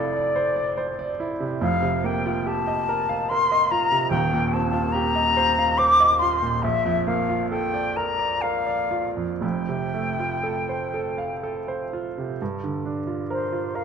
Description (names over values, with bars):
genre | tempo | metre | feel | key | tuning
classical, impressionist duo for flute and grand piano | 58-75 BPM | 3/4 | rubato | unclear | A4 = 440 Hz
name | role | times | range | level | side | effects
concert flute | melody | 0.0-13.8 s | C5 to D6 | -22 LUFS | left 3 dB | none
clear baby grand piano | accompaniment | 0.0-13.8 s | Eb1 to F5 | -25 LUFS | right 3 dB | none
room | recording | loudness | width
moderate recital hall reverb, RT60 1.4 s | dark, warm production | -21 LUFS | side -7 dB against mid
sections
0.0-12.4 A section; 12.4-13.8 B section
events
none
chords
0.0 Dm9/F; 1.6 F9sus4; 4.1 Eb69; 6.6 Bbmaj7; 9.4 Fadd9; 12.4 Gm7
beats
0.77 | 1.61 2.45 3.30 | 4.12 4.94 5.79 | 6.64 7.52 8.44 | 9.43 10.44 11.42 | 12.40 13.30